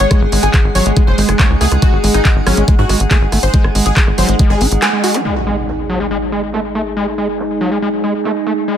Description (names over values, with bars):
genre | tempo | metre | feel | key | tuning
psychedelic trance | 140 BPM | 4/4 | straight | unclear | A4 = 438 Hz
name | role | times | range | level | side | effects
supersaw stab | melody | 0.0-5.1 s | C#4 to C#5 | -21 LUFS | equal | phaser, sidechain pumping, ping-pong delay
evolving wavetable pad | sustained chords | 0.0-8.8 s | G#3 to G#4 | -21 LUFS | right 2 dB | phaser, built-in reverb, sidechain pumping
tight sequencer bass | bass | 0.0-4.8 s | F#1 to G#2 | -15 LUFS | equal | tube saturation
drum and bass drum kit | drums | 0.0-8.8 s | handclaps, hi-hat, rim click | -19 LUFS | equal | overdrive, low-pass filter on hats, low-pass filter on snare, low-pass filter on room
warbly tape-like pad | texture | 0.0-8.8 s | D#4 to G#5 | -23 LUFS | equal | chorus, built-in reverb, sidechain pumping
screaming distorted acid line | riff | 0.1-8.8 s | F#3 to D#4 | -20 LUFS | moving between left 4 dB and right 2 dB | distortion, chorus, auto-pan, sidechain pumping, ping-pong delay
electronic kick drum | drums | 0.1-4.5 s | none | -12 LUFS | equal | overdrive
zap and impact | sound effects | 5.1-7.0 s | none | -25 LUFS | equal | none
room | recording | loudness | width
little or no reverb | none | -11 LUFS | side -10 dB against mid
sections
0.0-5.3 A section; 5.3-8.8 B section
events
drop 0.0-5.3; band accent 4.8; impact 5.3-7.0; filter sweep on ambient pad 5.3-8.8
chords
0.0 G#5